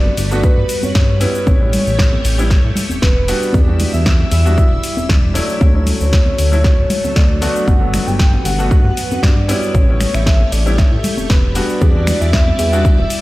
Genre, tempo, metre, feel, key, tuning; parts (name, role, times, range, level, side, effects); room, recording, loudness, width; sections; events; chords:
nu-disco, nu disco; 116 BPM; 4/4; swing 54% on 16ths; A4 = 442 Hz
soft octave-layered synth lead; melody; 0.0-13.2 s; B4 to G5; -22 LUFS; equal; chorus, analog delay
clear concert grand piano; accompaniment; 0.0-12.9 s; F#3 to F#4; -22 LUFS; equal; slapback echo
string machine, full ensemble; sustained chords; 0.0-13.2 s; F#3 to E6; -26 LUFS; equal; phaser, ensemble chorus, sidechain pumping
chorused synth bass; bass; 0.0-13.1 s; D1 to A2; -16 LUFS; equal
congas; percussion; 0.1-12.6 s; -24 LUFS; left 1 dB
house drum kit; drums; 0.2-13.2 s; finger snaps, hi-hat, shaker, snare drum; -22 LUFS; equal
electronic kick drum; drums; 0.4-13.0 s; -13 LUFS; equal
light reverb; played on a big sound system in a bare room, stone room reverb; -12 LUFS; side -18 dB against mid
0.0-13.2 A section
0.0 Gmaj7; 1.5 A7; 3.3 Em7; 5.6 Dmaj7; 7.7 Gmaj7; 9.7 A7; 11.6 Em7